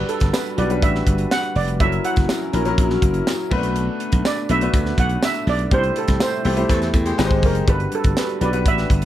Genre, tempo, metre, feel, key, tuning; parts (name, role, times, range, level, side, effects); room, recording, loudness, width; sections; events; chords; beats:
polished 1980s jazz-funk pop; 122 BPM; 4/4; straight; G major; A4 = 440 Hz
steel pan; melody; 0.0-9.1 s; A4 to F#5; -24 LUFS; right 4 dB
bright baby grand piano; accompaniment; 0.0-9.1 s; F#3 to C5; -24 LUFS; left 3 dB; lush chorus
chorused pulse-width pad; sustained chords; 0.0-9.1 s; C3 to B4; -30 LUFS; right 2 dB
slap bass; bass; 0.0-9.1 s; F1 to E2; -21 LUFS; equal
tight funk drum kit; drums; 0.1-9.1 s; crash cymbal, hi-hat, kick drum, snare drum; -21 LUFS; equal
tambourine; percussion; 0.3-8.3 s; -36 LUFS; right 7 dB
warm horn section; second line; 6.4-7.4 s; E3 to C5; -29 LUFS; equal
small room ambience; dark, warm production; -17 LUFS; side -12 dB against mid
0.0-9.1 A section
band accent 5.7-7.7
0.0 Gmaj7; 1.8 F#7; 3.5 Bm7; 5.7 C6; 7.2 Abmaj7; 7.7 Gmaj7
0.33 0.82 1.31 | 1.80 2.29 2.78 3.27 | 3.76 4.25 4.74 5.23 | 5.72 6.21 6.70 7.19 | 7.68 8.17 8.66